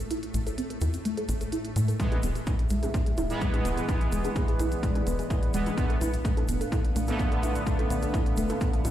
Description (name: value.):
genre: melodic techno.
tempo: 127 BPM.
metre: 4/4.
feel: straight.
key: unclear.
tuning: A4 = 440 Hz.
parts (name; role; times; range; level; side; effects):
soft round pluck; arpeggios; 0.0-8.9 s; G#3 to A4; -33 LUFS; equal; wide subtle chorus, sidechain pumping, ping-pong delay.
tight sequencer bass; bass; 0.0-8.9 s; E1 to A2; -29 LUFS; equal; tube saturation, sidechain pumping.
bowed-like drone; drone; 0.0-8.9 s; A2 to B3; -39 LUFS; left 2 dB; built-in reverb, sidechain pumping.
egg shaker; percussion; 0.0-8.9 s; none; -45 LUFS; left 2 dB; none.
techno drum kit; drums; 0.1-8.9 s; hi-hat, toms; -40 LUFS; left 1 dB; none.
dark analog pad; sustained chords; 2.6-8.9 s; A3 to F5; -37 LUFS; equal; chorus, sidechain pumping.
analog synth brass; stabs; 2.0-8.9 s; D3 to B3; -33 LUFS; right 2 dB; chorus, sidechain pumping, ping-pong delay.
electronic kick drum; drums; 2.0-8.7 s; none; -28 LUFS; equal; none.
room: light reverb, digital ambience.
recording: played on a big sound system in a bare room, large studio reverb.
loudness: -25 LUFS.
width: side -12 dB against mid.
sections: 0.0-8.9 A section.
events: filter sweep on synth arpeggio sound 0.0-8.9; kick drops out 0.1-2.0.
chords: 0.0 A5; 2.0 E; 5.8 Bm7b5.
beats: | 0.11 0.58 1.05 1.52 | 2.00 2.47 2.94 3.41 | 3.89 4.36 4.83 5.30 | 5.78 6.25 6.72 7.19 | 7.67 8.14 8.61.